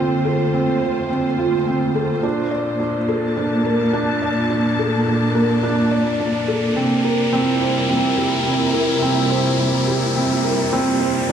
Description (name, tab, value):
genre	piano and strings electronica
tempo	106 BPM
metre	4/4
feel	straight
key	unclear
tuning	A4 = 440 Hz
part	dark studio string section	sustained chords	0.0-11.3 s	Bb2 to A5	-20 LUFS	equal	none
part	felt-muted upright piano	riff	0.0-11.3 s	C4 to D5	-20 LUFS	right 1 dB	digital delay
part	riser	sound effects	0.9-11.3 s	none	-27 LUFS	left 2 dB	none
room	wet scoring stage reverb, RT60 1.9 s, small room ambience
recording	small room reverb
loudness	-16 LUFS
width	side -8 dB against mid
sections	0.0-11.3 A section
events	build-up 0.0-11.3; riser 0.9-11.3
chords	0.0 Dm7; 2.2 Bbmaj7; 6.8 C7